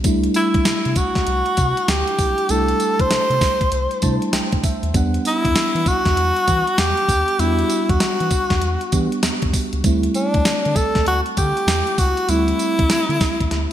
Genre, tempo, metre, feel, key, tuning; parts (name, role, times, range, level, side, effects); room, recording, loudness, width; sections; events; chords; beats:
R&B, new jack swing; 98 BPM; 4/4; swing 64% on 16ths; E minor; A4 = 440 Hz
mellow FM electric piano; accompaniment; 0.0-13.7 s; G3 to A5; -24 LUFS; right 1 dB; chorus
round analog bass; bass; 0.0-13.7 s; B1 to E3; -23 LUFS; equal
crisp 8-bit digital drum machine; drums; 0.0-13.7 s; hi-hat, kick drum, snare drum, tambourine; -21 LUFS; equal; gated reverb
breathy tenor saxophone; melody; 0.4-13.7 s; D4 to C5; -20 LUFS; equal; ping-pong delay
moderate lush hall reverb, RT60 1.9 s, digital ambience; bright 1980s-style digital production; -16 LUFS; side -11 dB against mid
0.0-13.7 A section
FM electric piano fill 3.7-4.9, 13.5; drum fill 13.5
0.0 C6; 4.9 Em9; 9.8 D9sus4
| 0.05 0.66 1.27 1.88 | 2.50 3.11 3.72 4.33 | 4.94 5.56 6.17 6.78 | 7.39 8.01 8.62 9.23 | 9.84 10.45 11.07 11.68 | 12.29 12.90 13.52